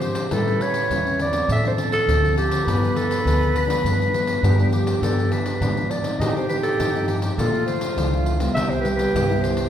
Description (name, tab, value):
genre	samba and choro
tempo	102 BPM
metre	4/4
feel	straight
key	unclear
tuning	A4 = 439 Hz
part	growling clarinet	melody	0.0-9.7 s	G4 to E5	-24 LUFS	equal	none
part	breathy concert flute	second line	0.0-9.7 s	F4 to C5	-26 LUFS	right 3 dB	none
part	nylon-string guitar	accompaniment	0.0-9.7 s	F2 to E4	-25 LUFS	left 2 dB	none
part	upright bass	bass	0.0-9.6 s	C2 to Bb2	-24 LUFS	equal	none
part	pandeiro	percussion	0.0-9.7 s	none	-28 LUFS	left 2 dB	none
room	wet recital hall reverb, RT60 1.6 s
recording	recorded in a church or concert hall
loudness	-18 LUFS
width	side -10 dB against mid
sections	0.0-9.7 A section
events	none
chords	0.3 A7; 1.5 Dm7/A; 2.7 G7; 6.2 F7/A; 7.4 Bbmaj7; 8.6 Cmaj7